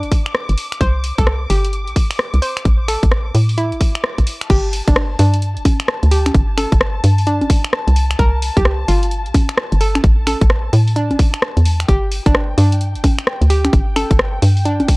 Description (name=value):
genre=UK garage, two-step garage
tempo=130 BPM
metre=4/4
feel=swing 63% on 16ths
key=unclear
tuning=A4 = 440 Hz
part: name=hollow square pluck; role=melody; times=0.0-15.0 s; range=D4 to C5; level=-22 LUFS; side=right 1 dB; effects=chorus, analog delay
part: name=muted chamber violin section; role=sustained chords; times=0.0-15.0 s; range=G5 to D6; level=-29 LUFS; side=left 3 dB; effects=sidechain pumping
part: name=hollow knocking FM bass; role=bass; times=0.0-14.9 s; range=F1 to A2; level=-15 LUFS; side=equal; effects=none
part: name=punchy analog drum machine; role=drums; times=0.0-15.0 s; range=congas, crash cymbal, finger snaps, hi-hat, rim click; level=-21 LUFS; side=equal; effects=none
part: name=electronic kick drum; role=drums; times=0.1-15.0 s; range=none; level=-14 LUFS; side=equal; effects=none
room=digital ambience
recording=dry, gritty hardware recording, cassette tape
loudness=-13 LUFS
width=side -25 dB against mid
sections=0.0-4.5 A section; 4.5-15.0 B section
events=band accent 4.0; drop 4.5-15.0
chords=0.0 N.C.; 0.6 Csus2; 2.7 A5; 4.5 Gsus2; 8.0 C5; 10.0 A5; 11.9 G5